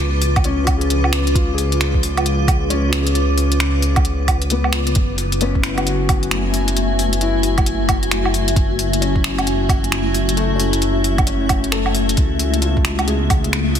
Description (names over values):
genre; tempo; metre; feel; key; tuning
future garage; 133 BPM; 4/4; swing 62% on 16ths; F# minor; A4 = 440 Hz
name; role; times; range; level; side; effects
felt-muted upright piano; accompaniment; 0.0-13.8 s; A3 to A4; -24 LUFS; left 4 dB; sidechain pumping, ping-pong delay
granular cloud pad; sustained chords; 0.0-13.8 s; A3 to D6; -22 LUFS; left 1 dB; built-in reverb, sidechain pumping
dark detuned saw bass; bass; 0.0-13.8 s; F#1 to C#2; -20 LUFS; equal; sidechain pumping
organic electronic drum kit; drums; 0.2-13.8 s; finger snaps, hi-hat, woodblock; -22 LUFS; right 1 dB; overdrive, studio reverb, soft clipping on snare
electronic kick drum; drums; 0.4-13.4 s; none; -19 LUFS; equal; overdrive, studio reverb
room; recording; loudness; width
light reverb; dense, heavily limited modern master; -15 LUFS; side -8 dB against mid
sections
0.0-5.0 A section; 5.0-13.8 A section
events
none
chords
0.0 C#7b9; 5.0 F#m9; 12.2 C#7b9b13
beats
0.00 0.45 0.90 | 1.35 1.80 2.25 2.70 | 3.15 3.60 4.06 4.51 | 4.96 5.41 5.86 6.31 | 6.76 7.21 7.67 8.12 | 8.57 9.02 9.47 9.92 | 10.37 10.82 11.27 11.72 | 12.18 12.63 13.08 13.53